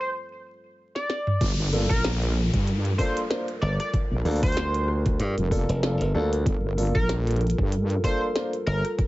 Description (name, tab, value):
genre	glitch hop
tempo	95 BPM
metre	4/4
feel	swing 56% on 16ths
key	G minor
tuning	A4 = 440 Hz
part	sync lead	melody	0.0-8.8 s	Bb4 to D5	-30 LUFS	equal	chorus, digital delay
part	dark analog pad	sustained chords	0.0-9.1 s	G3 to C5	-33 LUFS	right 1 dB	chorus, vintage 12-bit sampler grit, sidechain pumping
part	glitchy drum kit	drums	1.0-9.1 s	crash cymbal, hi-hat, rim click, snare drum, toms	-31 LUFS	equal	none
part	wobble bass	bass	1.4-8.0 s	F1 to G2	-24 LUFS	equal	chorus, tube saturation
part	electronic kick drum	drums	1.4-9.1 s	none	-25 LUFS	equal	overdrive
part	downlifter	sound effects	1.4-6.5 s	none	-37 LUFS	left 1 dB	none
part	warm grand piano	stabs	1.7-8.5 s	Bb3 to C5	-30 LUFS	left 1 dB	sidechain pumping, digital delay
part	glassy slap bass	bass	3.6-8.8 s	F1 to G2	-25 LUFS	equal	none
room	little or no reverb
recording	vinyl crackle, nothing above 7.8 kHz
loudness	-22 LUFS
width	side -17 dB against mid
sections	0.0-1.4 A section; 1.4-9.1 B section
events	break 0.1-1.4; drum fill 0.9-1.4; drop 1.4-9.1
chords	0.0 G7sus2; 1.4 Gm9